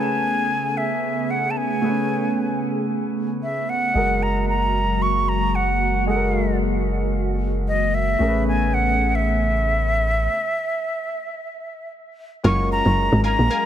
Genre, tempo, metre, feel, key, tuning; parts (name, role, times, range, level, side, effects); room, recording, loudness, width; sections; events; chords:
amapiano; 113 BPM; 4/4; swing 55% on 16ths; A4 = 440 Hz
concert flute; melody; 0.0-13.7 s; D#5 to C#6; -23 LUFS; right 1 dB; tape echo
warm grand piano; accompaniment; 0.0-13.7 s; G#3 to B4; -27 LUFS; equal
warm analog pad; sustained chords; 0.0-13.7 s; C#3 to G#4; -26 LUFS; equal; chorus
punchy sub bass; bass; 3.9-10.3 s; F#1 to A1; -23 LUFS; equal
analog pluck; stabs; 12.4-13.6 s; A#4 to G#5; -30 LUFS; left 2 dB; chorus, tape echo
tight log drum bass; bass; 12.4-13.5 s; F#1 to A#1; -18 LUFS; equal
light reverb, small room ambience; -19 LUFS; side -10 dB against mid
0.0-12.4 A section; 12.4-13.7 B section
stop 10.3-12.4; drop 12.4-13.7
0.0 Amaj9; 4.0 F#add9; 8.2 Amaj9; 12.4 F#maj9